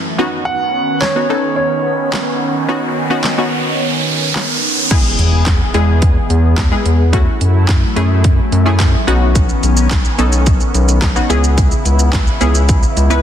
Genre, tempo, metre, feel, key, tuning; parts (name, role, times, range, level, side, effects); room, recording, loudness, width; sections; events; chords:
dance-pop; 108 BPM; 4/4; straight; A4 = 437 Hz
lush unison pad; sustained chords; 0.0-13.2 s; F#2 to G#4; -20 LUFS; left 1 dB; chorus, phaser, sidechain pumping
punchy chord stab; accompaniment; 0.2-13.2 s; G#3 to B4; -19 LUFS; left 1 dB; chorus, sidechain pumping
warm grand piano; melody; 0.5-4.3 s; C#5 to F#5; -19 LUFS; right 2 dB; tape echo
riser and impact; sound effects; 2.0-7.1 s; -20 LUFS; right 2 dB
pop drum kit; drums; 1.0-13.2 s; crash cymbal, handclaps, hi-hat, kick drum, shaker, snare drum; -16 LUFS; equal
round analog bass; bass; 5.2-13.2 s; B1 to F#2; -13 LUFS; equal; sidechain pumping
light reverb, digital ambience; dense, heavily limited modern master; -11 LUFS; side -10 dB against mid
0.0-4.9 A section; 4.9-13.2 B section
riser 2.0-4.9; impact 4.9-7.1
0.2 Badd9; 4.9 E; 7.1 F#m7; 9.1 Badd9; 11.3 C#m7